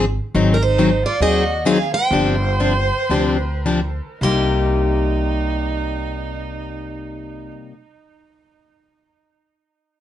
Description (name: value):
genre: acoustic string swing (jazz manouche)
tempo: 99-142 BPM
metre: 4/4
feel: swing 62% on 8ths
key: C minor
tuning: A4 = 436 Hz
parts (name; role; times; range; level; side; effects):
- picked plugged-in steel-string acoustic guitar; accompaniment; 0.0-7.7 s; C3 to Ab4; -20 LUFS; left 4 dB; none
- upright bass; bass; 0.0-7.5 s; G1 to Eb2; -22 LUFS; right 1 dB; none
- picked plugged-in steel-string acoustic guitar; melody; 0.5-7.5 s; Bb4 to C6; -22 LUFS; right 3 dB; plate reverb
- warm violin; second line; 0.5-7.5 s; D4 to C5; -26 LUFS; right 4 dB; tape echo
room: moderate studio reverb, RT60 0.6 s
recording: nothing above 11.0 kHz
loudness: -16 LUFS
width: side -11 dB against mid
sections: 0.0-4.2 A section; 4.2-9.0 B section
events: slowing down 0.3-4.2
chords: 0.3 Ab7; 2.1 G7sus4; 4.2 Cm7